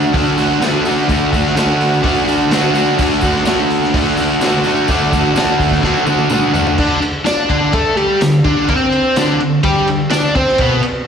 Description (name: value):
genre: garage rock duo or trio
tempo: 126 BPM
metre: 4/4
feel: straight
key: unclear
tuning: A4 = 440 Hz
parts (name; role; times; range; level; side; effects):
- overdriven electric guitar; riff; 0.0-10.9 s; B2 to D5; -13 LUFS; equal; slapback echo
- tambourine; percussion; 0.0-10.2 s; none; -35 LUFS; right 2 dB; none
- crunchy breakbeat drum kit; drums; 0.1-10.9 s; crash cymbal, hi-hat, kick drum, ride cymbal, snare drum, toms; -20 LUFS; equal; none
room: light reverb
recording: live gig heard through the venue's PA, recital hall reverb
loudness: -12 LUFS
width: side -7 dB against mid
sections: 0.0-6.8 A section; 6.8-11.1 B section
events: drum fill 5.8-6.8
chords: 0.0 D; 6.8 D5